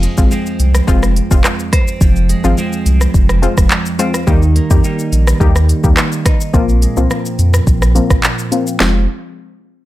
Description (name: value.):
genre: dancehall.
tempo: 106 BPM.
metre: 4/4.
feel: straight.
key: F minor.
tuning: A4 = 440 Hz.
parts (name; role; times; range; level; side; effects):
analog pluck; accompaniment; 0.0-9.0 s; F3 to G4; -19 LUFS; left 4 dB; chorus, low-pass filter.
twelve-string electric guitar; arpeggios; 0.0-9.0 s; F2 to Eb4; -19 LUFS; right 3 dB; low-pass filter.
warm sub bass; bass; 0.0-9.1 s; F1 to F2; -13 LUFS; equal; none.
afro-pop drum kit; drums; 0.0-8.9 s; handclaps, hi-hat, kick drum, rim click, shaker, snare drum; -14 LUFS; equal; none.
room: little or no reverb.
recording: none.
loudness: -10 LUFS.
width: side -15 dB against mid.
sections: 0.0-8.8 A section; 8.8-9.9 B section.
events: filter sweep 0.0-8.8.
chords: 0.0 Fm; 4.3 Eb; 6.5 Bbsus2; 8.8 Fm.